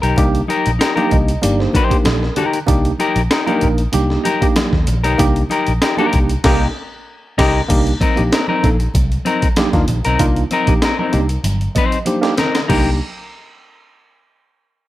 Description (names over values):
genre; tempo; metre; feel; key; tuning
funk; 96 BPM; 4/4; straight; C minor; A4 = 440 Hz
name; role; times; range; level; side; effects
clean electric guitar; accompaniment; 0.0-12.9 s; C4 to C5; -19 LUFS; left 4 dB; none
vintage muted fingered electric bass; bass; 0.0-13.0 s; G1 to Eb2; -18 LUFS; equal; none
breakbeat sampler-style drum kit; drums; 0.0-12.9 s; crash cymbal, hi-hat, kick drum, snare drum; -18 LUFS; equal; none
mellow tine electric piano; stabs; 0.2-13.0 s; Bb3 to Eb5; -19 LUFS; right 2 dB; medium stereo tremolo
congas; percussion; 0.2-13.0 s; none; -28 LUFS; right 4 dB; none
room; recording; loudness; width
light reverb, digital ambience; none; -13 LUFS; side -15 dB against mid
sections
0.0-7.7 A section; 7.7-12.7 B section; 12.7-14.9 C section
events
tine electric piano fill 0.8-2.7, 11.4-12.7; band accent 6.4-7.7; drum fill 12.1-12.7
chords
0.0 Cm7